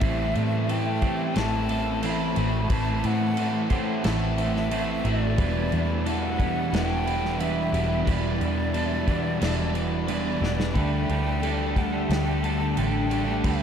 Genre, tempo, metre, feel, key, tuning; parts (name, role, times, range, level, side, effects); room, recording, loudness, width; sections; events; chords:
rock, shoegaze and dream pop; 89 BPM; 4/4; straight; A4 = 438 Hz
breathy concert flute; melody; 0.0-13.6 s; D5 to B5; -31 LUFS; left 1 dB; analog delay
twelve-string electric guitar; arpeggios; 0.0-13.6 s; F#4 to C5; -37 LUFS; left 1 dB; wide subtle chorus, analog delay
clean electric guitar; riff; 0.0-13.6 s; A2 to C5; -30 LUFS; right 6 dB; reverse reverb
distorted electric guitar; riff; 0.0-13.6 s; E2 to D4; -32 LUFS; equal; distortion
thick fuzz guitar; riff; 0.0-13.6 s; E2 to D4; -31 LUFS; left 6 dB; distortion, analog chorus
vintage muted fingered electric bass; bass; 0.0-13.6 s; E1 to A2; -28 LUFS; equal
loose indie drum kit; drums; 0.0-13.6 s; crash cymbal, kick drum, snare drum; -31 LUFS; equal
wet huge ambient reverb, RT60 7.8 s; dreamy mix soaked in reverb; -22 LUFS; side -8 dB against mid
0.0-10.8 A section; 10.8-13.6 B section
drum fill 10.4-10.8
0.0 Am; 5.4 Em7; 10.8 Dsus4